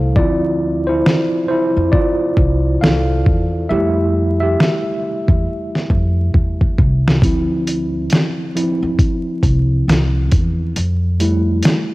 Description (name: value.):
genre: lo-fi hip hop.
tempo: 68 BPM.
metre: 4/4.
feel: swing 61% on 16ths.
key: D minor.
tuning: A4 = 440 Hz.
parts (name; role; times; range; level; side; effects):
tine electric piano; accompaniment; 0.0-11.9 s; F3 to F5; -18 LUFS; equal; overdrive, fast stereo tremolo, low-pass filter.
upright bass; bass; 0.0-11.6 s; C2 to F2; -18 LUFS; equal; none.
dusty soul sampler-style drum kit; drums; 0.2-11.9 s; hi-hat, kick drum, snare drum; -16 LUFS; equal; overdrive.
room: light reverb.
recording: home recording on cassette, vinyl crackle.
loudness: -14 LUFS.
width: side -19 dB against mid.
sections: 0.0-11.9 A section.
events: break 0.0-7.2; tine electric piano solo 0.0-11.9; drum fill 6.3-7.2.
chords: 0.2 Dm7; 3.7 Fmaj9; 7.2 Dm7; 10.8 Fmaj9.